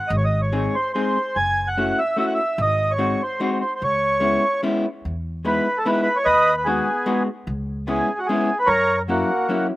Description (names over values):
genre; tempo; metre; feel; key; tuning
musette waltz; 147 BPM; 3/4; straight; C# minor, E major from 5.0 s; A4 = 440 Hz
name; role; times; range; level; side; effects
mellow accordion; melody; 0.0-9.7 s; A#3 to G#5; -20 LUFS; right 1 dB; none
upright bass; bass; 0.1-9.2 s; F#1 to F#2; -26 LUFS; equal; none
vintage hollow-body jazz guitar; accompaniment; 0.5-9.7 s; F#3 to G#4; -23 LUFS; left 2 dB; none
room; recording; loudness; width
little or no reverb; recorded outdoors, with no room sound; -18 LUFS; side -17 dB against mid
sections
0.0-5.0 A section; 5.0-9.8 B section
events
none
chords
0.1 G#; 1.4 F#m7; 2.6 G#7; 3.8 C#m7; 5.0 Emaj7; 6.3 G#m7/D#; 7.5 C#m7; 8.7 F#7